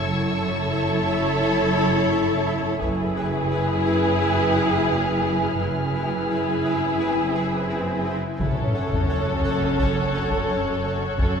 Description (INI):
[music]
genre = cinematic, suspense film score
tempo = 86 BPM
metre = 4/4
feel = straight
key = F# minor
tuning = A4 = 440 Hz
[part]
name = warm symphonic violin section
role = melody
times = 0.0-11.4 s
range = B4 to C#5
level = -31 LUFS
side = left 1 dB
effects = none
[part]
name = dark symphonic violin section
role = second line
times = 0.0-11.4 s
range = G#4 to A4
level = -27 LUFS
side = equal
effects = none
[part]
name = dark symphonic viola section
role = accompaniment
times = 0.0-11.4 s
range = C#4 to E4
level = -26 LUFS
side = left 1 dB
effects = none
[part]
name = pulsing gated texture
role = sustained chords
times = 0.0-11.4 s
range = E4 to F#5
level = -30 LUFS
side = left 1 dB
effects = chorus, built-in reverb
[part]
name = rich symphonic cello section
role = bass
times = 0.0-11.4 s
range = F#2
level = -29 LUFS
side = right 2 dB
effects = none
[part]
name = warm symphonic double bass section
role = bass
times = 0.0-11.4 s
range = F#1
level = -28 LUFS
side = right 2 dB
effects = none
[part]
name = dark symphonic violin section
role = texture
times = 0.0-11.4 s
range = B5 to G#6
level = -36 LUFS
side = left 4 dB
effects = none
[part]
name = taiko ensemble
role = drums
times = 2.8-4.2, 8.4-11.4 s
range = none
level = -29 LUFS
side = equal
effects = none
[part]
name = swell and sub drop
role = sound effects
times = 7.2-11.2 s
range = none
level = -30 LUFS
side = equal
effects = none
[sound]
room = moderate scoring stage reverb, RT60 1.7 s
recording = minimal, uncompressed stereo recording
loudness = -20 LUFS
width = side -6 dB against mid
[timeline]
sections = 0.0-8.4 A section; 8.4-11.4 B section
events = swell 7.2-8.4; impact 8.4-11.2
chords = 0.0 F#m7; 2.8 Eadd9/F#; 8.4 F#m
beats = | 0.03 0.72 1.42 2.12 | 2.82 3.51 4.21 4.91 | 5.61 6.30 7.00 7.70 | 8.40 9.10 9.79 10.49 | 11.19